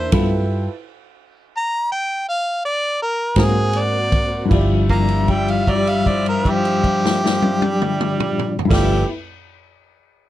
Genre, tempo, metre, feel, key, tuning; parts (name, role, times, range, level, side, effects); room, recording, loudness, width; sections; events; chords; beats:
slow blues; 52-58 BPM (dotted quarters); 12/8; straight; A4 = 440 Hz
warm harmonica; melody; 0.0-9.1 s; G4 to Bb5; -21 LUFS; equal; overdrive
warm concert grand piano; accompaniment; 0.0-9.0 s; E4 to D5; -27 LUFS; right 6 dB
tonewheel organ; sustained chords; 0.0-9.1 s; F3 to E5; -27 LUFS; left 2 dB; slow rotary speaker, chorus vibrato
warm horn section; sustained chords; 0.0-9.0 s; F3 to G5; -32 LUFS; left 1 dB
vintage muted fingered electric bass; bass; 0.0-9.0 s; G1 to Ab2; -20 LUFS; equal
semi-hollow electric guitar; accompaniment; 0.1-9.1 s; G2 to E4; -22 LUFS; left 6 dB; tremolo
swinging big-band drum kit; drums; 0.1-8.9 s; crash cymbal, kick drum, ride cymbal, snare drum, toms; -22 LUFS; equal
warm tenor saxophone; second line; 4.9-9.0 s; F3 to Bb3; -25 LUFS; right 4 dB
little or no reverb; dry, close 1970s-style studio recording; -16 LUFS; side -14 dB against mid
0.0-4.5 A section; 4.5-9.2 B section
slowing down 0.0-4.5; held note 4.5-8.7
0.1 G13; 3.4 Ab9; 4.5 G13
| 0.13 1.18 2.26 3.37 | 4.51 5.67 6.84 8.00